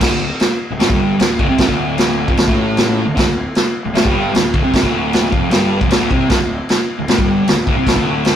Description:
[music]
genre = garage rock duo or trio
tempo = 153 BPM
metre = 4/4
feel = straight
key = D minor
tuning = A4 = 440 Hz
[part]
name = fuzz guitar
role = riff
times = 0.0-8.4 s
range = D2 to C4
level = -17 LUFS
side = equal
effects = distortion
[part]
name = fuzz fingered electric bass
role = bass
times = 0.0-8.4 s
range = D1 to C2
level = -24 LUFS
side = equal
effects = overdrive
[part]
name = vintage drum kit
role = drums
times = 0.0-8.3 s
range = crash cymbal, kick drum, snare drum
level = -15 LUFS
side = equal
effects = none
[sound]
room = light reverb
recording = rough rehearsal-room recording, warm saturation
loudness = -13 LUFS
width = side -9 dB against mid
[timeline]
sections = 0.0-8.4 A section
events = none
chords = 0.0 Dm

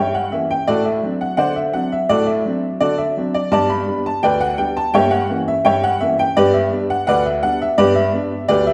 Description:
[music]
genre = ragtime piano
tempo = 84 BPM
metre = 2/4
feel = straight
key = G major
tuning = A4 = 440 Hz
[part]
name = clear upright piano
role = solo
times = 0.0-8.7 s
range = D2 to B5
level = -18 LUFS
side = equal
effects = none
[sound]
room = wet recital hall reverb, RT60 1.6 s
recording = recorded in a church or concert hall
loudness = -18 LUFS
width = mono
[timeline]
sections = 0.0-8.7 A section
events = none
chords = 0.0 Gdim7; 0.7 D7/A; 3.5 G; 4.9 Gdim7; 6.4 G

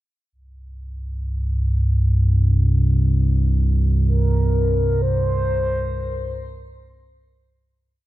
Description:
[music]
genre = dark ambient drone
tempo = free time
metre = none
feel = none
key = unclear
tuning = A4 = 441 Hz
[part]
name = deep rumbling drone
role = drone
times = 0.9-7.9 s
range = C2 to G2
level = -18 LUFS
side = equal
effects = built-in reverb
[part]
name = mellow horn-like synth lead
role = melody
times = 4.1-6.4 s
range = Bb4 to C5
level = -24 LUFS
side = left 3 dB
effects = chorus, cassette tape, shimmer reverb, ping-pong delay
[sound]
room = wet cathedral reverb, RT60 7.3 s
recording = cassette tape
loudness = -17 LUFS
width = side -15 dB against mid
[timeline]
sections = 0.3-7.8 A section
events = fade-out 4.1-7.8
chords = 0.3 C5

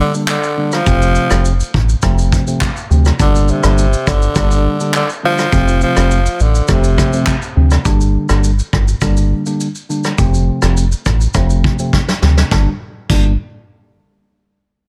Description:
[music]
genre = afrobeats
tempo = 103 BPM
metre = 4/4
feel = straight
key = G minor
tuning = A4 = 444 Hz
[part]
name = growling tenor saxophone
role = melody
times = 0.0-7.6 s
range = C3 to F3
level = -20 LUFS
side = equal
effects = delay
[part]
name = tine electric piano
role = accompaniment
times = 0.0-13.3 s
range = C3 to D4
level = -20 LUFS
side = equal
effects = phaser
[part]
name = round analog bass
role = bass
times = 0.0-13.4 s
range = F1 to D2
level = -15 LUFS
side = equal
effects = none
[part]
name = vintage brush drum kit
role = drums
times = 0.0-13.2 s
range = crash cymbal, handclaps, hi-hat, kick drum, rim click, shaker, snare drum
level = -20 LUFS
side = equal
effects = none
[sound]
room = small room reverb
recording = none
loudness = -14 LUFS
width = mono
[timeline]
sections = 0.0-7.9 A section; 7.9-12.5 B section; 12.5-14.8 C section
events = drum fill 11.9-12.5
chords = 0.0 Gm; 0.9 F; 3.2 Gm; 5.5 F; 7.9 Gm; 10.2 F; 12.5 Gm

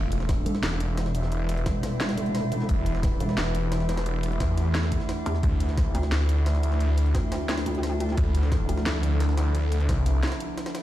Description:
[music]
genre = dark technical drum and bass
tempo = 175 BPM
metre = 4/4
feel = straight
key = E phrygian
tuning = A4 = 438 Hz
[part]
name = metallic inharmonic drone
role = sustained chords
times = 0.0-10.8 s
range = D3 to E4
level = -34 LUFS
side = right 1 dB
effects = chorus, built-in reverb, sidechain pumping
[part]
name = snarling distorted saw bass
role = bass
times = 0.0-10.2 s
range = E1 to E2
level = -24 LUFS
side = equal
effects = distortion, tube saturation
[part]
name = ethereal airy pad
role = texture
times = 0.0-10.8 s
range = F3 to E5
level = -35 LUFS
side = right 2 dB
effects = ensemble chorus, built-in reverb, phaser, sidechain pumping
[part]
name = drum and bass drum kit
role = drums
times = 0.1-10.8 s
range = hi-hat, snare drum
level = -32 LUFS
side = equal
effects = overdrive
[part]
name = jungle sampler-style drum kit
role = drums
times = 0.1-10.8 s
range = hi-hat, snare drum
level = -38 LUFS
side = equal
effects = high-pass filter on hats, high-pass filter on snare
[part]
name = electronic kick drum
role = drums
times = 0.3-10.0 s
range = none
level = -26 LUFS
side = equal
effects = overdrive
[part]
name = pulsing pluck wobble bass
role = bass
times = 0.5-8.8 s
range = E1 to E2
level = -27 LUFS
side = equal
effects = chorus
[sound]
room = little or no reverb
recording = played on a big sound system in a bare room, large studio reverb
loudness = -23 LUFS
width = side -14 dB against mid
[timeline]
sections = 0.0-10.8 A section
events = break 10.2-10.8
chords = 0.0 Em7; 5.4 Dmadd9

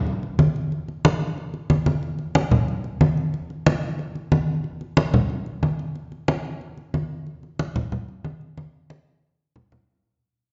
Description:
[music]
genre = latin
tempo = 183 BPM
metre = 4/4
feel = straight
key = none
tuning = none
[part]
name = congas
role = percussion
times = 0.1-9.8 s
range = none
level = -23 LUFS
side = equal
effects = none
[sound]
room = wet recital hall reverb, RT60 1.4 s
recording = recorded in a church or concert hall, nothing above 7.5 kHz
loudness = -24 LUFS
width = mono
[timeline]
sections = 0.0-4.6 A section; 4.6-9.9 B section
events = fade-out 4.6-9.9; drum fill 8.6-9.9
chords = none

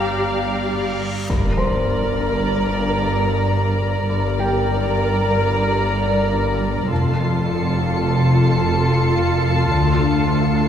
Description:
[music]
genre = cinematic, suspense film score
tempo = 107 BPM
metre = 5/4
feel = straight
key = G minor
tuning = A4 = 439 Hz
[part]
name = muted chamber violin section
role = melody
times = 0.0-10.7 s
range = A5 to Bb5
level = -26 LUFS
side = left 1 dB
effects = none
[part]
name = muted symphonic violin section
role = second line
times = 0.0-10.7 s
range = A4 to F5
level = -28 LUFS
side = left 3 dB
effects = none
[part]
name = muted symphonic viola section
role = accompaniment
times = 0.0-10.7 s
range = F4 to Bb4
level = -24 LUFS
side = right 1 dB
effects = none
[part]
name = marimba with soft mallets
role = riff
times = 0.0-10.7 s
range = F2 to D4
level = -24 LUFS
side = left 3 dB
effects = none
[part]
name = muted symphonic cello section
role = bass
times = 0.0-10.7 s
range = D2 to G2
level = -24 LUFS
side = right 2 dB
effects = none
[part]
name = muted symphonic double bass section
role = bass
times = 0.0-10.7 s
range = F1 to D2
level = -23 LUFS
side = equal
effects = none
[part]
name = reverse cymbal and impact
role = sound effects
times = 0.9-4.1 s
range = none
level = -26 LUFS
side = equal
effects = none
[part]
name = felt-muted upright piano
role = texture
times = 0.0-9.7 s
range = G4 to C6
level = -29 LUFS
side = left 1 dB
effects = none
[part]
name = muted symphonic violin section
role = texture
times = 0.0-1.0, 6.9-10.7 s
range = D6 to C#7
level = -30 LUFS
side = left 2 dB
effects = none
[sound]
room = wet recital hall reverb, RT60 1.6 s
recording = recorded in a church or concert hall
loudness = -16 LUFS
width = side -9 dB against mid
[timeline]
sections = 0.0-1.3 A section; 1.3-10.7 B section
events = reverse cymbal 0.9-1.3; impact 1.3-4.1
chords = 0.0 Gm7; 1.3 Gm; 6.9 F; 9.7 Dm

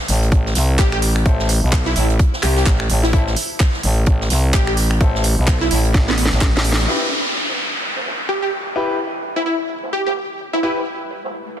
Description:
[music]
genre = bass house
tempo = 128 BPM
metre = 4/4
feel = swing 58% on 16ths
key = E minor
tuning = A4 = 440 Hz
[part]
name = growling FM bass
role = bass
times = 0.1-6.9 s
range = A1 to C2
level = -17 LUFS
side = equal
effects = overdrive, sidechain pumping
[part]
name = garage drum kit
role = drums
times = 0.1-6.8 s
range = finger snaps, handclaps, hi-hat, snare drum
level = -22 LUFS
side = right 1 dB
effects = soft clipping on snare
[part]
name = open jazz drum kit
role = drums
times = 0.1-11.6 s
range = hi-hat, snare drum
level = -30 LUFS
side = right 2 dB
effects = sidechain pumping on hats, high-pass filter on hats, low-pass filter on hats, soft clipping on snare, high-pass filter on snare, low-pass filter on snare, high-pass filter on room, low-pass filter on room
[part]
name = electronic kick drum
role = drums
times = 0.3-6.5 s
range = none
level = -18 LUFS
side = equal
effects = none
[part]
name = plucky unison lead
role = melody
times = 0.8-10.7 s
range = B3 to G4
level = -23 LUFS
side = right 1 dB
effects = wide subtle chorus, vintage 12-bit sampler grit, digital delay
[part]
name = bright grand piano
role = stabs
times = 1.3-10.8 s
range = E4 to E5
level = -26 LUFS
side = left 3 dB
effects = sidechain pumping, digital delay
[part]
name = downlifter and riser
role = sound effects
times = 6.9-11.6 s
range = none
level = -25 LUFS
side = equal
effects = none
[sound]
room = light reverb, studio reverb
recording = dense, heavily limited modern master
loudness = -15 LUFS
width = side -10 dB against mid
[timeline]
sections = 0.0-6.9 A section; 6.9-11.6 B section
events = drum fill 5.9-6.9; band accent 6.7; riser 10.8-11.6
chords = 0.0 Am; 6.9 Em

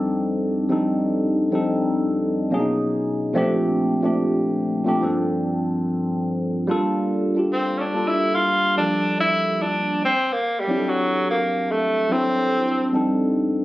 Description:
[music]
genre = R&B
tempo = 72 BPM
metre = 4/4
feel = swing 62% on 16ths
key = unclear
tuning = A4 = 439 Hz
[part]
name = tine electric piano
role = accompaniment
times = 0.0-13.6 s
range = F2 to D5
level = -20 LUFS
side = equal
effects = phaser
[part]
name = breathy tenor saxophone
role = melody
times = 7.5-12.9 s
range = F#3 to F4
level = -20 LUFS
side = equal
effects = none
[sound]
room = light reverb, studio ambience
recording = recorded on a phone in the room, studio reverb, compression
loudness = -19 LUFS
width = side -16 dB against mid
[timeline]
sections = 0.0-6.7 A section; 6.7-13.6 B section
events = tenor saxophone solo 6.7-13.6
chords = 0.0 F13; 2.5 Bmaj13; 3.3 Bbmaj13; 5.0 Gm11; 6.7 Gm9; 10.0 D7; 12.9 F13

